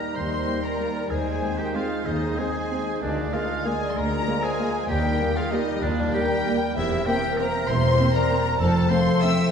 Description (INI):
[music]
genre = classical, orchestral ballroom waltz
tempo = 192 BPM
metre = 3/4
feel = uneven beats, rubato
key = Eb major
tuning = A4 = 441 Hz
[part]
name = dark studio violin section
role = melody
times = 0.0-9.5 s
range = D5 to E6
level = -30 LUFS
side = left 3 dB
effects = none
[part]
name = dark studio violin section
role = second line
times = 0.0-9.5 s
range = D4 to E5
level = -32 LUFS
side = left 3 dB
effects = none
[part]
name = mellow clarinet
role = second line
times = 0.0-9.5 s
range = A4 to C5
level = -34 LUFS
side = right 2 dB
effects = none
[part]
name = mellow large flute ensemble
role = second line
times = 0.0-9.5 s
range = F4 to G5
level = -32 LUFS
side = left 2 dB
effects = none
[part]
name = warm oboe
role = second line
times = 0.0-9.5 s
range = D4 to E5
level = -32 LUFS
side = right 2 dB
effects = none
[part]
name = dark bassoon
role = accompaniment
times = 0.0-9.5 s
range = G3 to C4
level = -34 LUFS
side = right 1 dB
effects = none
[part]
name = concert harp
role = arpeggios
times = 0.0-9.5 s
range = D3 to C6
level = -30 LUFS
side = left 2 dB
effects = none
[part]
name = dark studio cello section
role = bass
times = 0.2-8.8 s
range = D2 to F2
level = -31 LUFS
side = right 1 dB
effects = none
[part]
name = warm studio double bass section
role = bass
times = 0.2-8.8 s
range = E1 to Eb2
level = -28 LUFS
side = right 2 dB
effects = none
[part]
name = dark studio viola section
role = accompaniment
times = 0.5-9.3 s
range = G3 to C4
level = -33 LUFS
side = right 2 dB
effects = none
[part]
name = warm French horn section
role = sustained chords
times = 0.5-9.3 s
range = G3 to C4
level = -34 LUFS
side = equal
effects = none
[sound]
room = wet concert hall reverb, RT60 2.0 s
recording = heard from further back in the room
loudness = -21 LUFS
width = side -7 dB against mid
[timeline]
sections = 0.0-9.5 A section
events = none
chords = 0.0 Eb; 1.1 Ab/Eb; 3.0 Bb7/D; 4.9 Eb; 6.8 C7/E; 8.6 F